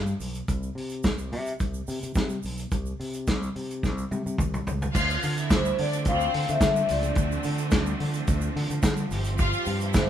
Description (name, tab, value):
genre	disco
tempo	108 BPM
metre	4/4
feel	straight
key	D minor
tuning	A4 = 440 Hz
part	fingered electric bass	bass	0.0-10.1 s	G1 to D3	-29 LUFS	equal	none
part	tube shaker	percussion	0.1-10.1 s	none	-44 LUFS	right 6 dB	none
part	warm soul drum kit	drums	0.2-10.1 s	crash cymbal, hi-hat, kick drum, snare drum, toms	-26 LUFS	equal	none
part	clear studio string section	second line	4.9-10.1 s	C4 to F5	-30 LUFS	left 1 dB	none
part	clear studio string section	sustained chords	4.9-10.1 s	D3 to D4	-34 LUFS	right 1 dB	none
part	vibraphone with medium mallets	melody	5.5-10.1 s	C5 to F5	-27 LUFS	left 2 dB	slapback echo
room	moderate large studio reverb, RT60 1.2 s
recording	band playing live in one room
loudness	-24 LUFS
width	side -10 dB against mid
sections	0.0-4.9 A section; 4.9-10.1 B section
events	drum fill 3.8-4.9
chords	0.5 N.C.; 4.9 Dm7; 9.1 G7sus4